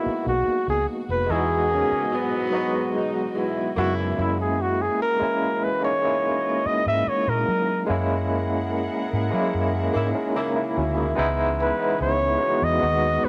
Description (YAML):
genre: soul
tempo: 73 BPM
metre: 4/4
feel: straight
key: unclear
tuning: A4 = 440 Hz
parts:
  - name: breathy flugelhorn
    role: melody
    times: 0.0-13.3 s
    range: E4 to E5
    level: -25 LUFS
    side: equal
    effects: cassette tape
  - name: overdriven tine electric piano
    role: accompaniment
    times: 0.0-13.3 s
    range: F#3 to D#5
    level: -28 LUFS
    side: equal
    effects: medium tremolo, cassette tape
  - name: warm studio string section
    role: sustained chords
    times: 0.0-13.3 s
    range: C#3 to F#5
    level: -37 LUFS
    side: equal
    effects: cassette tape
  - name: vintage muted fingered electric bass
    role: bass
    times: 0.1-13.3 s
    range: E#1 to F#3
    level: -29 LUFS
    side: equal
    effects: none
  - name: warm horn section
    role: stabs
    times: 1.3-4.3, 9.9-11.1 s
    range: G#2 to E4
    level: -30 LUFS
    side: equal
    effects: cassette tape
room: moderate studio reverb, RT60 0.5 s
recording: home recording on cassette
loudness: -23 LUFS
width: mono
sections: 0.0-7.9 A section; 7.9-11.2 B section; 11.2-13.3 C section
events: flugelhorn solo 0.0-7.9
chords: 0.0 G#m7; 1.3 Emaj9; 4.2 F#9; 11.2 C#m7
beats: 0.47 | 1.29 2.12 2.94 3.77 | 4.59 5.42 6.24 7.06 | 7.88 8.71 9.53 10.35 | 11.17 11.99 12.81